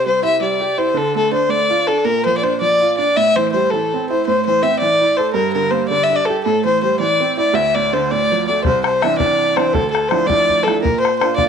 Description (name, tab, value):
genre	celtic folk, Celtic jig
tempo	109 BPM (dotted quarters)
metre	6/8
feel	straight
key	D minor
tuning	A4 = 437 Hz
part	dark fiddle	melody	0.0-11.5 s	A4 to E5	-15 LUFS	left 3 dB	slapback echo
part	clear upright piano	accompaniment	0.0-11.5 s	C2 to A4	-20 LUFS	right 14 dB	none
part	bodhran	percussion	8.6-11.5 s	none	-21 LUFS	left 6 dB	none
room	moderate spring reverb, RT60 1.2 s, small room ambience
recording	1960s-style stereo with parts hard left and right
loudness	-14 LUFS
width	side -7 dB against mid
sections	0.0-8.6 A section; 8.6-11.5 A section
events	none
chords	0.0 Cadd9; 1.0 Dm; 2.1 Bb; 3.2 Am7; 4.3 Am; 5.4 Gm; 6.5 Am7; 7.5 Dm; 8.6 Cadd9; 9.7 Dmadd9; 10.8 Bb